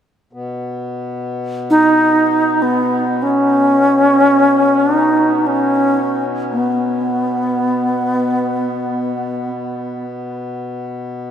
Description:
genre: world meditative, free-time meditation music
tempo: free time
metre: none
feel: none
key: B major pentatonic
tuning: A4 = 440 Hz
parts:
  - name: pedal harmonium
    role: drone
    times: 0.3-11.3 s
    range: B2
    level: -24 LUFS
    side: left 2 dB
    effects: none
  - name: alto flute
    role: melody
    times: 1.7-9.5 s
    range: B3 to D#4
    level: -13 LUFS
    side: equal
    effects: dub echo
room: wet plate reverb, RT60 3.0 s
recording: echo-heavy mix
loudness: -13 LUFS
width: side -9 dB against mid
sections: 0.3-11.3 A section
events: none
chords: none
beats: free time

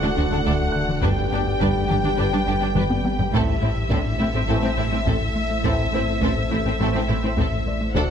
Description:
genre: cinematic, hybrid orchestral and electronic film score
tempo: 104 BPM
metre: 4/4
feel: straight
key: A dorian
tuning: A4 = 440 Hz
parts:
  - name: rich symphonic violin section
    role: melody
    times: 0.0-8.1 s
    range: E5 to G5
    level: -28 LUFS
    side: left 2 dB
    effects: none
  - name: warm symphonic violin section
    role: second line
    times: 0.0-8.0 s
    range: C4 to B4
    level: -31 LUFS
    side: left 1 dB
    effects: none
  - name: rich symphonic viola section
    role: accompaniment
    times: 0.0-8.0 s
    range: C4 to D4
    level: -31 LUFS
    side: left 1 dB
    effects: none
  - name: clear trombone section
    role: sustained chords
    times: 0.0-8.1 s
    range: D3 to B3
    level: -32 LUFS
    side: right 6 dB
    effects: none
  - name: mellow French horn section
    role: sustained chords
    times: 0.0-8.1 s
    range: C4 to G4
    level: -30 LUFS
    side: left 5 dB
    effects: none
  - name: soft additive organ-like pad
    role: sustained chords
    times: 0.0-8.1 s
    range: G3 to D5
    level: -31 LUFS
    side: right 1 dB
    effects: ensemble chorus, built-in reverb
  - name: tight sequenced synth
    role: arpeggios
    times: 0.0-8.0 s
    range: D3 to A4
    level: -34 LUFS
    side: equal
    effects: none
  - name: rubbery square bass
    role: riff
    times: 0.0-8.0 s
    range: D2 to A3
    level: -28 LUFS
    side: left 2 dB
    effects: none
  - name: pure sine sub bass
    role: bass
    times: 0.0-8.1 s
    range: D1 to A1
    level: -29 LUFS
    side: equal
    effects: none
  - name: rich symphonic cello section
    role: bass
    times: 0.0-8.0 s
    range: D2 to A2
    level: -28 LUFS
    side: right 2 dB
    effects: none
  - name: felt-muted upright piano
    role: texture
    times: 0.0-8.1 s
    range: C4 to F#6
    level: -36 LUFS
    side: left 2 dB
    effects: none
  - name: rich symphonic double bass section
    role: bass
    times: 0.2-8.0 s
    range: G1 to D2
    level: -29 LUFS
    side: right 3 dB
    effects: none
  - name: taiko ensemble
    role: drums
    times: 0.5-8.1 s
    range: none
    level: -27 LUFS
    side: equal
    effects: none
room: moderate scoring stage reverb, RT60 1.7 s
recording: close, detailed microphones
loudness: -19 LUFS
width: side -8 dB against mid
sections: 0.0-8.1 A section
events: drum fill 2.8-3.3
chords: 0.0 D; 1.0 G; 3.3 Am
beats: 0.46 | 1.03 1.61 2.19 2.76 | 3.34 3.92 4.49 5.07 | 5.65 6.22 6.80 7.38 | 7.96

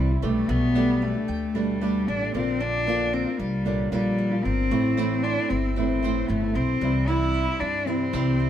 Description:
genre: acoustic pop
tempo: 114 BPM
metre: 4/4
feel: swing 55% on 16ths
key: C major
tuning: A4 = 440 Hz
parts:
  - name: dark cello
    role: melody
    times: 0.0-8.5 s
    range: G3 to E4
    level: -25 LUFS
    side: left 2 dB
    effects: none
  - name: felt-muted upright piano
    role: accompaniment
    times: 0.0-8.5 s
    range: G3 to D5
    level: -36 LUFS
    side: left 5 dB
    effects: none
  - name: flamenco guitar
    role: accompaniment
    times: 0.0-8.5 s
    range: A2 to G4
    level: -28 LUFS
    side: right 5 dB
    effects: none
  - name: mandolin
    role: arpeggios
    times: 0.0-8.5 s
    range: G3 to G5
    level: -40 LUFS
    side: right 6 dB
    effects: none
  - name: upright bass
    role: bass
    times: 0.0-8.5 s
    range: G1 to G2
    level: -27 LUFS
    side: equal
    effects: none
room: moderate studio reverb, RT60 0.9 s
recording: band playing live in one room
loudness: -22 LUFS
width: side -10 dB against mid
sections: 0.0-8.5 A section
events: none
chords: 0.2 Gadd9/B; 2.3 Bb; 4.7 Am; 6.8 C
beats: | 0.49 1.02 1.55 2.07 | 2.60 3.13 3.66 4.18 | 4.71 5.24 5.76 6.29 | 6.82 7.35 7.87 8.40

